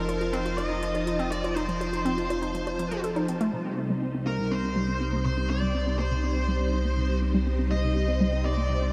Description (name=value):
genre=ambient, sequencer-driven space music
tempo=122 BPM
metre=4/4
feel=straight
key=C dorian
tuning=A4 = 436 Hz
part: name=high-gain lead guitar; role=melody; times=0.0-8.9 s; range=Bb4 to Eb5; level=-34 LUFS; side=equal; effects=distortion, analog delay
part: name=phased string machine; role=sustained chords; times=0.0-8.9 s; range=C3 to A5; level=-33 LUFS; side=equal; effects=ensemble chorus, phaser
part: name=hollow square pluck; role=riff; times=0.0-8.9 s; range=C3 to A4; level=-33 LUFS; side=equal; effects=chorus, analog delay
part: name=round analog bass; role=bass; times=0.0-8.9 s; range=F1 to C2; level=-32 LUFS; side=equal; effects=none
part: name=bubbling stepped-filter texture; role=texture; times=0.0-3.5 s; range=C5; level=-45 LUFS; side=equal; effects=none
part: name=electronic hi-hat and woodblock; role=percussion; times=0.1-3.5 s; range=none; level=-45 LUFS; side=equal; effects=analog delay
room=wet lush hall reverb, RT60 2.9 s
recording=dreamy mix soaked in reverb, cassette tape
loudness=-27 LUFS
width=mono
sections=0.0-3.5 A section; 3.5-8.9 B section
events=filter sweep on synth arpeggio sound 3.5-8.9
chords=0.0 F; 3.5 Cm